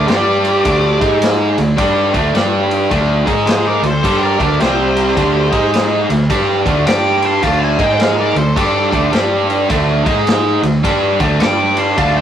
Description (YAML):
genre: blues rock power trio and southern rock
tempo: 106 BPM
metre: 4/4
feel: swing 64% on 8ths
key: unclear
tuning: A4 = 440 Hz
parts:
  - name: octave-fuzz lead guitar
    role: melody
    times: 0.0-12.2 s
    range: C5 to D6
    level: -20 LUFS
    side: left 2 dB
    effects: wah, distortion
  - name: smooth overdriven lead guitar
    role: second line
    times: 0.0-12.2 s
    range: G4 to A5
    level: -20 LUFS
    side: right 2 dB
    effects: none
  - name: raw garage guitar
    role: riff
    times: 0.0-12.2 s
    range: C3 to G#4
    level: -14 LUFS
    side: right 1 dB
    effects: overdrive
  - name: vintage muted fingered electric bass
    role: bass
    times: 0.0-12.2 s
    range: C2 to G#2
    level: -21 LUFS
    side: equal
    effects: none
  - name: vintage drum kit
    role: drums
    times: 0.1-12.1 s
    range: kick drum, ride cymbal, snare drum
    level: -19 LUFS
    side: left 1 dB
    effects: none
room: moderate studio reverb, RT60 0.6 s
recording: rough rehearsal-room recording, warm saturation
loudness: -12 LUFS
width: side -9 dB against mid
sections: 0.0-12.2 A section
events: none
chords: 0.1 G5; 0.6 D5; 0.9 G#5; 1.5 D5; 2.3 G5; 2.9 D5; 3.2 G#5; 3.8 D5; 4.6 C5; 5.2 D5; 5.4 G#5; 6.0 D5; 6.9 G5; 7.4 Dm; 7.7 G#5; 8.3 D5; 9.1 G5; 9.7 D5; 10.0 G#5; 10.5 D5; 11.4 G5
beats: 0.08 | 0.65 1.21 1.78 2.34 | 2.90 3.47 4.03 4.60 | 5.16 5.73 6.29 6.86 | 7.43 7.99 8.56 9.13 | 9.70 10.27 10.83 11.40 | 11.97